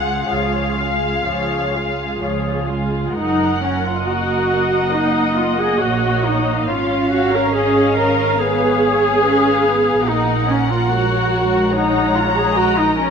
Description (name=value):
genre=classical, slow romantic movement for string orchestra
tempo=60-73 BPM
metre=4/4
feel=rubato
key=F# major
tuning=A4 = 440 Hz
part: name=muted studio violin section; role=melody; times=0.0-13.1 s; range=C#5 to A#5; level=-24 LUFS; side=left 3 dB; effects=none
part: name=muted studio violin section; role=second line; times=0.0-13.1 s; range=E#4 to F#5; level=-24 LUFS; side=left 3 dB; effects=none
part: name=muted studio viola section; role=accompaniment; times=0.0-13.1 s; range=E#3 to A#4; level=-18 LUFS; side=equal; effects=none
part: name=muted studio cello section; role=bass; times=0.0-13.1 s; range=C#2 to C#4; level=-24 LUFS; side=right 3 dB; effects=none
part: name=muted studio double bass section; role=bass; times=0.0-13.1 s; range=F#1 to C#2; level=-24 LUFS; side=right 5 dB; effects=none
room=moderate recital hall reverb, RT60 1.5 s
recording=none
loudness=-15 LUFS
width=side -6 dB against mid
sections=0.0-3.2 A section; 3.2-13.1 B section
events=none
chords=0.0 C#; 3.2 F#; 6.7 C#7/G#; 10.1 F#/A#